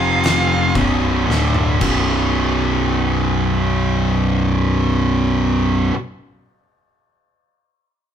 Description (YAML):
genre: stoner and doom metal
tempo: free time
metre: none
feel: none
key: B minor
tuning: A4 = 445 Hz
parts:
  - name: fuzz lead guitar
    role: melody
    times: 0.0-0.7 s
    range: F5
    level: -19 LUFS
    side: right 4 dB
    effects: distortion
  - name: fuzz guitar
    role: riff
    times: 0.0-6.0 s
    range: B1 to F3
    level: -17 LUFS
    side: right 1 dB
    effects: distortion
  - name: overdriven picked electric bass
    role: bass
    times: 0.0-5.9 s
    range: B0 to F1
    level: -21 LUFS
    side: left 1 dB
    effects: none
  - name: oversized low-tuned drum kit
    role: drums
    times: 0.2-2.1 s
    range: crash cymbal, kick drum, snare drum, toms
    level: -24 LUFS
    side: left 1 dB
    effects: none
room: light reverb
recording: band playing live in one room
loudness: -15 LUFS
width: side -8 dB against mid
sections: 0.0-2.4 A section; 2.4-6.7 B section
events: slowing down 0.0-2.4; lead electric guitar solo 0.0-2.4; drum fill 1.3-2.4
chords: 0.0 F5; 0.8 Bm; 1.8 B5